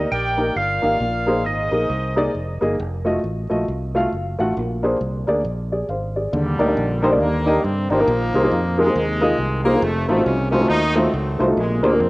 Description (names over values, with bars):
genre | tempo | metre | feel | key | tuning
uptempo gospel | 136 BPM | 4/4 | swing 61% on 8ths | Eb major | A4 = 440 Hz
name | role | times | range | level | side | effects
clean lap steel guitar | melody | 0.0-2.6 s | Eb5 to G5 | -27 LUFS | right 2 dB | none
mellow horn section | melody | 0.0-2.6, 6.3-12.1 s | Bb2 to G5 | -23 LUFS | equal | none
dark upright piano | accompaniment | 0.0-12.1 s | Bb2 to Gb5 | -19 LUFS | equal | cassette tape
fingered electric bass | bass | 0.0-12.1 s | F1 to G2 | -24 LUFS | equal | none
room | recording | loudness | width
light reverb, studio reverb | home recording on cassette | -17 LUFS | side -22 dB against mid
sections
0.0-6.3 A section; 6.3-12.1 B section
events
none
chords
0.0 Ebmaj7; 1.0 Bb9sus4; 2.8 F7b9; 4.6 Bb9; 6.3 Ebmaj7; 8.1 Bb9sus4; 9.8 F7b9; 11.6 Bb9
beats
0.11 0.56 | 1.00 1.45 1.89 2.34 | 2.79 3.23 3.67 4.12 | 4.56 5.00 5.45 5.89 | 6.33 6.77 7.21 7.64 | 8.08 8.52 8.95 9.39 | 9.82 10.26 10.70 11.13 | 11.57 12.01